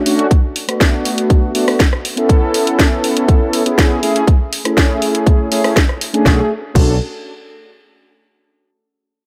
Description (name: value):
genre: nu-disco, nu disco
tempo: 121 BPM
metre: 4/4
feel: straight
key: B dorian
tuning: A4 = 444 Hz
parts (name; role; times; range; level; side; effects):
- mellow synth brass; accompaniment; 0.0-6.9 s; A3 to A4; -19 LUFS; equal; chorus, cassette tape, sidechain pumping, digital delay
- house drum kit; drums; 0.1-6.9 s; crash cymbal, hi-hat, rim click, snare drum; -21 LUFS; equal; none
- electronic kick drum; drums; 0.3-6.9 s; none; -15 LUFS; equal; none
- picked electric bass; bass; 6.3-7.0 s; B1; -19 LUFS; equal; none
room: light reverb, digital ambience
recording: none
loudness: -14 LUFS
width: mono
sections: 0.0-6.3 A section; 6.3-8.2 B section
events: none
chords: 0.3 E7sus4 (rootless); 2.3 Amaj7; 6.3 Bm7